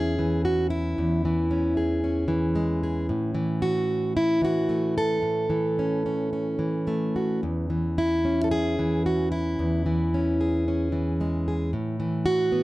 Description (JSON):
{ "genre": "folk, solo fingerstyle acoustic guitar", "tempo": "112 BPM", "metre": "4/4", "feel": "rubato", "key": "E major", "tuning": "A4 = 440 Hz", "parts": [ { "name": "fingerpicked plugged-in steel-string acoustic guitar", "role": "solo", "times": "0.0-12.6 s", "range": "E2 to A4", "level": "-23 LUFS", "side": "equal", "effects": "none" } ], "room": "light reverb", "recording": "dark, warm production", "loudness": "-23 LUFS", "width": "side -18 dB against mid", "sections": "0.0-12.6 A section", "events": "none", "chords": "0.0 E6; 3.1 A6; 7.4 E6; 11.7 A5" }